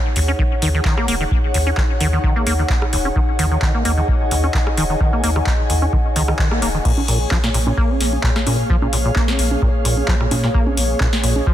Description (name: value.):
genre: acid house.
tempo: 130 BPM.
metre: 4/4.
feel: swing 53% on 16ths.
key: Bb minor.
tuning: A4 = 440 Hz.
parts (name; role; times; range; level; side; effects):
dark analog pad; sustained chords; 0.0-11.5 s; Bb3 to Gb5; -26 LUFS; equal; chorus, vintage 12-bit sampler grit, sidechain pumping.
ethereal airy pad; texture; 0.0-11.5 s; Ab4 to Ab5; -27 LUFS; left 1 dB; ensemble chorus, built-in reverb, sidechain pumping.
deep acid bass; riff; 0.2-11.5 s; Eb2 to Db4; -22 LUFS; equal; tube saturation, analog chorus, sidechain pumping, ping-pong delay.
warm sub bass; bass; 0.2-11.4 s; Eb1 to Bb2; -20 LUFS; equal; sidechain pumping.
booming analog drum machine; drums; 0.2-11.4 s; congas, crash cymbal, handclaps, hi-hat, rim click, snare drum; -24 LUFS; equal; none.
electronic kick drum; drums; 0.4-11.5 s; none; -19 LUFS; equal; none.
room: digital ambience.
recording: dense, heavily limited modern master.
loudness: -15 LUFS.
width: side -12 dB against mid.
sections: 0.0-6.9 A section; 6.9-11.5 B section.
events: band accent 6.4; drop 6.9-11.5.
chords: 0.0 Ebm7; 6.9 Bbm7.